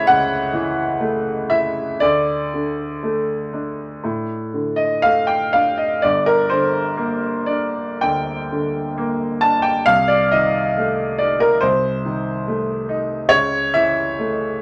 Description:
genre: classical, romantic nocturne for solo piano.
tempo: 54-72 BPM.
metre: 4/4.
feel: rubato.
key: unclear.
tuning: A4 = 441 Hz.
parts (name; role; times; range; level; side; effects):
clear concert grand piano; solo; 0.0-14.6 s; G1 to A5; -19 LUFS; equal; none.
room: moderate studio reverb, RT60 0.8 s.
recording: none.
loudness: -19 LUFS.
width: mono.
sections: 0.0-14.6 A section.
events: none.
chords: 0.0 A/C#; 2.0 D5; 6.0 Gm; 9.8 Adim/C; 13.3 A/C#.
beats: 0.08 1.01 | 2.02 3.03 4.03 5.02 | 6.02 6.95 8.00 8.96 | 9.85 10.76 11.63 12.48 | 13.32 14.20.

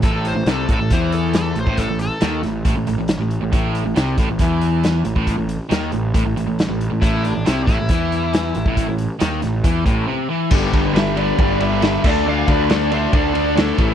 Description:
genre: classic rock.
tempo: 137 BPM.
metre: 4/4.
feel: straight.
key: A minor.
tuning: A4 = 442 Hz.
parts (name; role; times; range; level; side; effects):
crunchy overdriven guitar; riff; 0.0-13.9 s; G2 to D4; -23 LUFS; left 10 dB; none.
overdriven electric guitar; riff; 0.0-13.9 s; G2 to D4; -24 LUFS; right 11 dB; harmonic tremolo.
fuzz picked electric bass; bass; 0.0-13.9 s; G1 to E2; -22 LUFS; equal; overdrive.
raw garage drum kit; drums; 0.0-13.9 s; crash cymbal, hi-hat, kick drum, ride cymbal, snare drum; -20 LUFS; equal; none.
overdriven slide guitar; second line; 0.1-2.4, 7.0-8.9 s; D4 to C5; -26 LUFS; left 3 dB; none.
bright tonewheel organ; sustained chords; 10.5-13.9 s; A3 to D5; -33 LUFS; equal; none.
octave-fuzz lead guitar; second line; 10.9-13.9 s; E4 to D5; -28 LUFS; right 5 dB; distortion.
fuzz lead guitar; melody; 11.0-13.9 s; A4 to F5; -22 LUFS; right 3 dB; distortion.
room: small room ambience.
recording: dry, close 1970s-style studio recording.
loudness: -16 LUFS.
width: side -9 dB against mid.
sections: 0.0-10.5 A section; 10.5-13.9 B section.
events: break 10.1-10.5.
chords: 0.0 Am; 10.5 Gadd9; 12.0 Dm.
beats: | 0.03 0.47 0.90 1.34 | 1.78 2.21 2.65 3.09 | 3.53 3.96 4.40 4.84 | 5.27 5.71 6.15 6.58 | 7.02 7.46 7.90 8.33 | 8.77 9.21 9.64 10.08 | 10.52 10.95 11.39 11.82 | 12.26 12.69 13.13 13.56.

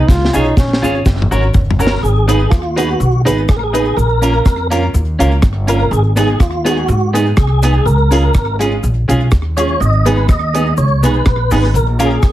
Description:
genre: ska.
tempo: 124 BPM.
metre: 4/4.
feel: straight.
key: G# dorian.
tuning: A4 = 440 Hz.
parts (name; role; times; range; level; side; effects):
warm trombone; melody; 0.0-1.0 s; C#4 to E#4; -18 LUFS; equal; slapback echo.
upright bass; bass; 0.1-12.3 s; F#1 to G#2; -14 LUFS; equal; none.
deep reggae drum kit; drums; 0.1-12.3 s; hi-hat, kick drum, rim click, snare drum, toms; -14 LUFS; equal; slapback echo.
cabasa; percussion; 0.1-12.3 s; none; -34 LUFS; left 6 dB; slapback echo.
clean electric guitar; accompaniment; 0.3-12.1 s; B3 to C#5; -18 LUFS; right 3 dB; slapback echo.
honky-tonk upright piano; stabs; 0.3-12.1 s; G#3 to C#5; -21 LUFS; left 2 dB; none.
mellow tonewheel organ; melody; 1.8-12.3 s; E#4 to D#5; -18 LUFS; equal; chorus vibrato, fast rotary speaker, slapback echo.
room: light reverb.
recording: heavily compressed radio sound.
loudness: -11 LUFS.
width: side -14 dB against mid.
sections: 0.0-2.0 A section; 2.0-12.3 B section.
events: trombone solo 0.0-2.0; drum fill 0.1-2.0.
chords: 0.1 C#; 1.1 F#; 2.0 G#m; 4.0 A#m; 5.9 G#m; 7.9 C#; 9.8 G#m; 11.7 A#m.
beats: | 0.09 0.57 1.06 1.54 | 2.03 2.51 3.00 3.48 | 3.97 4.46 4.94 5.43 | 5.91 6.40 6.89 7.37 | 7.86 8.34 8.83 9.32 | 9.80 10.29 10.77 11.26 | 11.74 12.23.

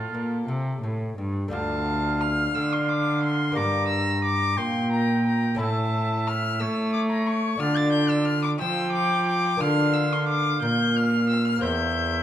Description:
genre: classical, baroque-style sonata movement with continuo.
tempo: 60 BPM (dotted quarters).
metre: 6/8.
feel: straight.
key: D minor.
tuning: A4 = 444 Hz.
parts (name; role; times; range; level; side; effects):
dark violin; melody; 0.0-12.2 s; A4 to A6; -28 LUFS; left 5 dB; none.
clear oboe; second line; 0.0-12.2 s; F4 to Bb5; -29 LUFS; right 4 dB; none.
lute; accompaniment; 0.0-12.2 s; D2 to C5; -30 LUFS; left 2 dB; none.
rich cello; bass; 0.0-12.2 s; D2 to A3; -25 LUFS; equal; none.
room: moderate recital hall reverb, RT60 1.2 s.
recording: none.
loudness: -22 LUFS.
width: side -11 dB against mid.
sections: 0.0-1.5 A section; 1.5-12.2 A section.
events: none.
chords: 0.0 F; 1.5 Dm; 3.6 Gm; 5.6 A; 7.6 Dm; 9.6 Bb/D; 11.6 C7/E.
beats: 0.48 | 1.53 2.55 | 3.56 4.58 | 5.59 6.61 | 7.61 8.62 | 9.62 10.62 | 11.63.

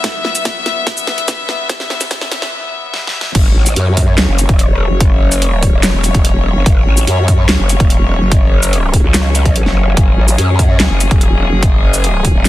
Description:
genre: heavy wobble dubstep.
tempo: 145 BPM.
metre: 4/4.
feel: half-time.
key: unclear.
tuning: A4 = 440 Hz.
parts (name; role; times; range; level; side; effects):
warm chamber string section; sustained chords; 0.0-12.5 s; F#3 to E5; -20 LUFS; left 3 dB; sidechain pumping.
dubstep drum kit; drums; 0.0-12.5 s; crash cymbal, handclaps, hi-hat, shaker, snare drum; -17 LUFS; equal; none.
electronic kick drum; drums; 0.0-12.3 s; none; -12 LUFS; equal; none.
growl bass; bass; 3.4-12.5 s; E1 to F#2; -13 LUFS; equal; chorus, overdrive.
room: little or no reverb.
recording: dense, heavily limited modern master, high-pass filter.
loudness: -10 LUFS.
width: side -15 dB against mid.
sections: 0.0-3.4 A section; 3.4-12.5 B section.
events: build-up 0.0-3.4; drum fill 0.0-2.5, 2.9-3.4; drop 3.4-12.5.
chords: 0.0 F#5.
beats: | 0.04 0.45 0.87 1.28 | 1.70 2.11 2.52 2.94 | 3.35 3.76 4.18 4.59 | 5.00 5.42 5.83 6.25 | 6.66 7.07 7.49 7.90 | 8.31 8.73 9.14 9.56 | 9.97 10.38 10.80 11.21 | 11.63 12.04 12.45.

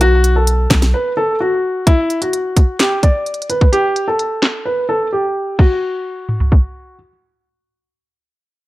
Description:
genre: hip hop, trap.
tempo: 129 BPM.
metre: 4/4.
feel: half-time.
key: B minor.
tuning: A4 = 440 Hz.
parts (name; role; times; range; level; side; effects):
dark baby grand piano; melody; 0.0-6.9 s; E4 to D5; -16 LUFS; equal; slapback echo.
hard-hitting 808-style bass; bass; 0.0-0.9 s; B1; -13 LUFS; equal; none.
trap drum kit; drums; 0.0-6.6 s; crash cymbal, handclaps, hi-hat, kick drum, snare drum, toms; -12 LUFS; equal; none.
room: little or no reverb.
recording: low-pass filter.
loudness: -13 LUFS.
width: side -17 dB against mid.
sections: 0.0-1.9 A section; 1.9-5.6 B section; 5.6-8.7 C section.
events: break 0.9-1.9; filter sweep 1.9-5.6; drums muted 4.7-5.6.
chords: 0.0 B5; 1.9 N.C..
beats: | 0.01 0.47 0.94 1.40 | 1.87 2.33 2.80 3.26 | 3.73 4.19 4.66 5.12 | 5.59 6.05 6.52.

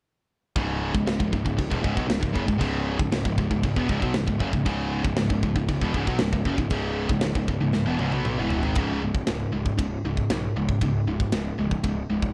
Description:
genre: heavy metal.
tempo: 117 BPM.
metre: 4/4.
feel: straight.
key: C# minor.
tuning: A4 = 440 Hz.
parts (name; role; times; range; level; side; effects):
high-gain distorted guitar; riff; 0.6-12.3 s; C#2 to B3; -28 LUFS; equal; distortion.
fuzz picked electric bass; bass; 0.6-12.3 s; C#1 to B1; -32 LUFS; equal; overdrive.
tight metal drum kit; drums; 0.6-12.3 s; crash cymbal, kick drum, ride cymbal, snare drum, toms; -30 LUFS; equal; none.
room: light reverb.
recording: cassette tape.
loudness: -25 LUFS.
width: mono.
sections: 0.6-8.8 A section; 8.8-12.3 B section.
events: drum fill 7.7-8.8.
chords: 0.6 C#m; 8.8 C#5.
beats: | 0.56 1.07 1.58 2.10 | 2.61 3.12 3.63 4.15 | 4.66 5.17 5.68 6.20 | 6.71 7.22 7.73 8.24 | 8.76 9.27 9.78 10.29 | 10.81 11.32 11.83.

